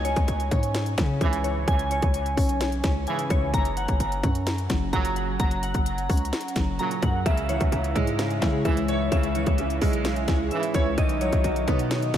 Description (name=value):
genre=hip hop, trap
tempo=129 BPM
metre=4/4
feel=half-time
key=C# dorian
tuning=A4 = 440 Hz
part: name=glassy digital keys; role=arpeggios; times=0.0-12.2 s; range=C#3 to A#5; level=-28 LUFS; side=left 1 dB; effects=chorus, diffuse ambient delay
part: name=hard-hitting 808-style bass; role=bass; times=0.0-12.2 s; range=F#1 to C#3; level=-27 LUFS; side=equal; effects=none
part: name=trap drum kit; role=drums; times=0.0-12.2 s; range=hi-hat, kick drum, snare drum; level=-26 LUFS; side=equal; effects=none
part: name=warm brass ensemble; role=stabs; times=1.2-11.0 s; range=G#2 to F#3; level=-34 LUFS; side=right 5 dB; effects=diffuse ambient delay
part: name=bright concert grand piano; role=accompaniment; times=7.3-12.2 s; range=C#3 to C#5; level=-30 LUFS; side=right 4 dB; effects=ensemble chorus
room=moderate cathedral reverb, RT60 5.7 s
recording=dreamy mix soaked in reverb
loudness=-22 LUFS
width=side -10 dB against mid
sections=0.0-12.2 A section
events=none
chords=0.0 C#m; 3.5 F#; 7.3 C#m; 11.0 Badd9